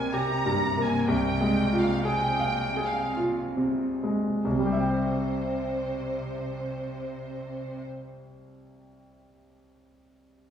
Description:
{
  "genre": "classical, romantic movement for piano and orchestra",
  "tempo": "44-64 BPM",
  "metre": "3/4",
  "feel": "rubato",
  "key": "unclear",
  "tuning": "A4 = 442 Hz",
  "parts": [
    { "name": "clear grand piano", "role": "melody", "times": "0.0-10.5 s", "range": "C2 to G5", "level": "-26 LUFS", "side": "equal", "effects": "none" },
    { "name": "rich symphonic violin section", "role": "melody", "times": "0.0-7.8 s", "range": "C5 to Bb5", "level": "-32 LUFS", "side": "right 1 dB", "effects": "none" },
    { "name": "rich symphonic cello section", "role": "bass", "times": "0.0-7.8 s", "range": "C3", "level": "-34 LUFS", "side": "right 2 dB", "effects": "none" }
  ],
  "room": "wet recital hall reverb, RT60 1.7 s",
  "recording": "heard from further back in the room, small room ambience",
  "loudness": "-25 LUFS",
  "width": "side -8 dB against mid",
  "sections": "0.0-4.4 A section; 4.4-8.1 B section",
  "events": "slowing down 0.0-4.4",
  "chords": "0.0 C5",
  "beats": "0.13 | 1.08 2.04 3.15 | 4.44 5.66 6.87"
}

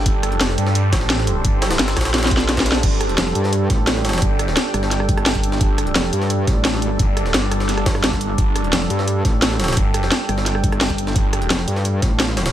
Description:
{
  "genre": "dark technical drum and bass",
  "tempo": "173 BPM",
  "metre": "4/4",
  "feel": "straight",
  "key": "unclear",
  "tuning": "A4 = 439 Hz",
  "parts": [
    { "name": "deep dark ambient pad", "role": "sustained chords", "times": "0.0-12.5 s", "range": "G3 to G5", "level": "-24 LUFS", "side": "right 1 dB", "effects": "chorus, built-in reverb, sidechain pumping" },
    { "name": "phased detuned saw bass", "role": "bass", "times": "0.0-11.5 s", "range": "F1 to G2", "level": "-21 LUFS", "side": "equal", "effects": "phaser, overdrive" },
    { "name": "drum and bass drum kit", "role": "drums", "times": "0.1-12.4 s", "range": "crash cymbal, hi-hat, rim click, snare drum", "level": "-21 LUFS", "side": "equal", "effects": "none" },
    { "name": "electronic kick drum", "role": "drums", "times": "0.1-12.1 s", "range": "none", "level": "-19 LUFS", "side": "equal", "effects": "overdrive" },
    { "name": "jungle sampler-style drum kit", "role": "drums", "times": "0.1-12.5 s", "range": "hi-hat, snare drum", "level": "-26 LUFS", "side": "equal", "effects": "overdrive, high-pass filter on hats, high-pass filter on snare" },
    { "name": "metallic wobble bass", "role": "bass", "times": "3.2-12.5 s", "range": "F1 to G2", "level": "-21 LUFS", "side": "equal", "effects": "distortion, chorus, tube saturation" }
  ],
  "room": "digital ambience",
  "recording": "none",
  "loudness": "-16 LUFS",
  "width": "side -12 dB against mid",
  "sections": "0.0-12.5 A section",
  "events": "drum fill 2.1-2.8",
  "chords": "0.0 G5",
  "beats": "| 0.06 0.41 0.75 1.10 | 1.45 1.79 2.14 2.49 | 2.83 3.18 3.53 3.87 | 4.22 4.57 4.91 5.26 | 5.61 5.95 6.30 6.65 | 7.00 7.34 7.69 8.04 | 8.38 8.73 9.08 9.42 | 9.77 10.12 10.46 10.81 | 11.16 11.50 11.85 12.20"
}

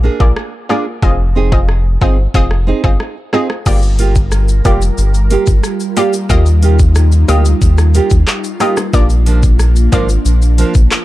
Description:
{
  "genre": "dancehall",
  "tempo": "91 BPM",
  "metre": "4/4",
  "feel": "straight",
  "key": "unclear",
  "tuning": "A4 = 439 Hz",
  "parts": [
    { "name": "nylon-string guitar", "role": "arpeggios", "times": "0.0-10.7 s", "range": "F3 to Ab4", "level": "-19 LUFS", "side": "right 6 dB", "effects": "tape echo" },
    { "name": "round analog bass", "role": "bass", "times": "0.0-10.9 s", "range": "F1 to Eb2", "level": "-11 LUFS", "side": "equal", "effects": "none" },
    { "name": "analog pluck", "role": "accompaniment", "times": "0.2-10.1 s", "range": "Bb3 to Eb5", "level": "-19 LUFS", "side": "left 2 dB", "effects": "chorus" },
    { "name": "island pop drum kit", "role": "drums", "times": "0.2-11.0 s", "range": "crash cymbal, handclaps, hi-hat, kick drum, rim click, shaker", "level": "-14 LUFS", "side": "equal", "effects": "overdrive" },
    { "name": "airy breathy pad", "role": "sustained chords", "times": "3.7-11.0 s", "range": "G3 to Bb4", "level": "-21 LUFS", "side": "equal", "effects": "chorus, sidechain pumping" },
    { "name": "maracas and timbales", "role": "percussion", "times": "3.7-11.0 s", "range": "none", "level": "-29 LUFS", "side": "left 7 dB", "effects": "none" }
  ],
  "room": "little or no reverb",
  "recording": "dark, warm production",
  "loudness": "-10 LUFS",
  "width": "side -16 dB against mid",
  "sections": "0.0-3.7 A section; 3.7-11.0 B section",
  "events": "none",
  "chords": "0.0 Bb7; 1.0 Fm7; 3.7 Gm7; 6.3 Ebadd9; 8.9 Bb",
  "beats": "0.37 | 1.02 1.69 2.34 3.00 | 3.66 4.32 4.98 5.64 | 6.30 6.96 7.62 8.28 | 8.94 9.60 10.26 10.91"
}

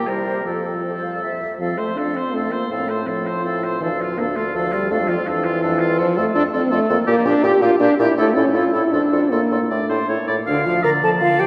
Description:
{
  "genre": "quick classical-period movement for wind quintet",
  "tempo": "162 BPM",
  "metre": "3/4",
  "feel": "straight",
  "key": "F major, D minor from 6.0 s",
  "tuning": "A4 = 439 Hz",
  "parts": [
    { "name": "concert flute", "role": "melody", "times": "0.0-11.5 s", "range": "A4 to Bb5", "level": "-31 LUFS", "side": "equal", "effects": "none" },
    { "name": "clear oboe", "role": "second line", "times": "0.0-11.5 s", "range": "F4 to F5", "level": "-27 LUFS", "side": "equal", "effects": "none" },
    { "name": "dark French horn", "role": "accompaniment", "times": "0.0-11.5 s", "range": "E3 to Bb4", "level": "-22 LUFS", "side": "equal", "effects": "none" },
    { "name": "mellow clarinet", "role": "accompaniment", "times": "0.0-11.5 s", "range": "D3 to F5", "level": "-31 LUFS", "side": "equal", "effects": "none" },
    { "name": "mellow bassoon", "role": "bass", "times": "0.0-10.8 s", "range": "D2 to C3", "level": "-26 LUFS", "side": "equal", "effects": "none" }
  ],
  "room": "wet cathedral reverb, RT60 4.7 s",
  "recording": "recorded in a church or concert hall",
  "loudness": "-19 LUFS",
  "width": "mono",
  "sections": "0.0-1.6 A section; 1.6-10.5 B section; 10.5-11.5 C section",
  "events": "none",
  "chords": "0.1 C7; 0.4 F; 2.7 F/A; 3.8 Dm; 4.9 Dm/F; 7.1 Gm/Bb; 8.2 A; 8.9 Dm/F; 9.3 Dm/A; 10.1 A; 10.5 Dm",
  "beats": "0.07 | 0.45 0.83 1.21 | 1.59 1.96 2.33 | 2.70 3.07 3.44 | 3.81 4.18 4.55 | 4.91 5.27 5.63 | 6.00 6.36 6.72 | 7.09 7.45 7.82 | 8.19 8.55 8.93 | 9.31 9.70 10.08 | 10.46 10.84 11.21"
}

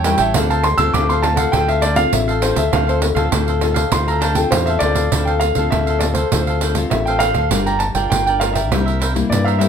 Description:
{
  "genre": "samba and choro",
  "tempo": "100 BPM",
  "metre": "4/4",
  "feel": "straight",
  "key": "D minor",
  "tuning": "A4 = 439 Hz",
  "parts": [
    { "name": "cavaquinho", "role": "accompaniment", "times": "0.0-9.7 s", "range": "D4 to G5", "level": "-23 LUFS", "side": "right 5 dB", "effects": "none" },
    { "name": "nylon-string guitar", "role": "accompaniment", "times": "0.0-9.7 s", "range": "G2 to Bb4", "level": "-22 LUFS", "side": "left 7 dB", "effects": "none" },
    { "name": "overdriven fingered electric bass", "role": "bass", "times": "0.0-9.7 s", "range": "G1 to G2", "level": "-20 LUFS", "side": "equal", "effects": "none" },
    { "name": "pandeiro", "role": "percussion", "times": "0.0-9.7 s", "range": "none", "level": "-21 LUFS", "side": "right 5 dB", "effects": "none" },
    { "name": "warm grand piano", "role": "melody", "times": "0.1-9.7 s", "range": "A4 to E6", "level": "-20 LUFS", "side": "right 1 dB", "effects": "none" }
  ],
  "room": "moderate studio reverb, RT60 0.6 s",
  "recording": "none",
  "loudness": "-14 LUFS",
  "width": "side -7 dB against mid",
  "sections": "0.0-5.1 A section; 5.1-9.7 B section",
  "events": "grand piano solo 0.0-5.1",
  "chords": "0.4 Dm7; 7.5 Gm7; 8.7 C7",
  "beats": "| 0.35 0.95 1.54 2.14 | 2.74 3.33 3.93 4.53 | 5.13 5.72 6.32 6.92 | 7.52 8.12 8.72 9.31"
}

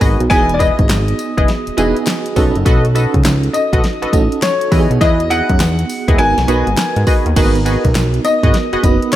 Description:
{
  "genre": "R&B, new jack swing",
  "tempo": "102 BPM",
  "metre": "4/4",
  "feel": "swing 64% on 16ths",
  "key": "G# minor",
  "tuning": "A4 = 440 Hz",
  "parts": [
    { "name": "FM electric piano with tremolo", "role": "accompaniment", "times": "0.0-9.2 s", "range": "A#3 to B4", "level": "-19 LUFS", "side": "right 5 dB", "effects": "none" },
    { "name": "funky polysynth comp", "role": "stabs", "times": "0.0-8.9 s", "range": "E4 to D#5", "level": "-21 LUFS", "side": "left 1 dB", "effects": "chorus" },
    { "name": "fat analog bass", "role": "bass", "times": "0.0-9.0 s", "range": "E1 to G#2", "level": "-16 LUFS", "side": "equal", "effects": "none" },
    { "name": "pop drum kit", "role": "drums", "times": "0.0-9.2 s", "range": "crash cymbal, handclaps, hi-hat, kick drum, snare drum, tambourine", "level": "-16 LUFS", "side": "equal", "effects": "none" },
    { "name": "warm baby grand piano", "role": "melody", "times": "0.3-9.2 s", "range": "C#5 to G#5", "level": "-18 LUFS", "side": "left 3 dB", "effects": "tape echo" },
    { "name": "group handclap", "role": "percussion", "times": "0.9-9.2 s", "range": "none", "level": "-31 LUFS", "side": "left 4 dB", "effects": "none" }
  ],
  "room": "light reverb",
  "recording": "none",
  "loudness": "-11 LUFS",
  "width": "side -13 dB against mid",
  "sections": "0.0-7.4 A section; 7.4-9.2 A section",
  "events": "none",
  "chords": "0.3 Emaj7; 2.4 B7; 4.7 Emaj7; 6.2 G#m7",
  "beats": "| 0.31 0.89 1.48 2.07 | 2.66 3.25 3.84 4.42 | 5.01 5.60 6.19 6.78 | 7.37 7.95 8.54 9.13"
}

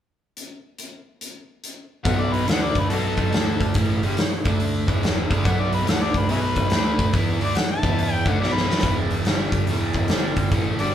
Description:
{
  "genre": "blues rock power trio and southern rock",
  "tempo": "142 BPM",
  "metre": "4/4",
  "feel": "swing 65% on 8ths",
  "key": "unclear",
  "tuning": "A4 = 439 Hz",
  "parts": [
    { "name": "big rock drum kit", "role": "drums", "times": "0.4-10.9 s", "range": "hi-hat, kick drum, snare drum", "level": "-22 LUFS", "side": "right 1 dB", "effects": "none" },
    { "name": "overdriven harmonica", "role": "melody", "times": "2.0-10.9 s", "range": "D4 to A5", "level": "-27 LUFS", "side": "left 3 dB", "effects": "none" },
    { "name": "tonewheel organ", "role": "sustained chords", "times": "2.0-10.9 s", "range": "A3 to D5", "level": "-36 LUFS", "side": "right 5 dB", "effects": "none" },
    { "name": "overdriven semi-hollow guitar", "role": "riff", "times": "2.0-10.9 s", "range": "E2 to F#4", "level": "-26 LUFS", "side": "left 1 dB", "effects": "spring reverb" },
    { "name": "bluesy overdriven lead guitar", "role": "second line", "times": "2.1-10.9 s", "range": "D4 to E5", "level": "-35 LUFS", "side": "right 5 dB", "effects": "distortion" },
    { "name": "fuzz picked electric bass", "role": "bass", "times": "2.1-10.9 s", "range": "E1 to F#2", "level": "-29 LUFS", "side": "equal", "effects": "overdrive" }
  ],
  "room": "light reverb",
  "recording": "band playing live in one room",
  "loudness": "-19 LUFS",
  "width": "side -10 dB against mid",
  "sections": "0.4-2.1 A section; 2.1-10.9 B section",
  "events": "drum fill 8.4-8.8",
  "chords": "0.4 N.C.; 2.1 B7; 2.5 D5; 2.9 B7; 3.3 D5; 3.8 E7; 4.4 D5; 4.8 E7; 5.5 B7; 5.9 D5; 6.3 B7; 6.7 D5; 7.1 B7; 7.8 E5; 8.2 B7; 8.8 E7; 9.3 G5; 9.7 E7; 10.1 G5",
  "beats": "| 0.36 0.79 1.21 1.64 | 2.06 2.49 2.91 3.34 | 3.76 4.18 4.61 5.03 | 5.46 5.88 6.30 6.72 | 7.15 7.57 7.99 8.41 | 8.83 9.26 9.68 10.10 | 10.52 10.94"
}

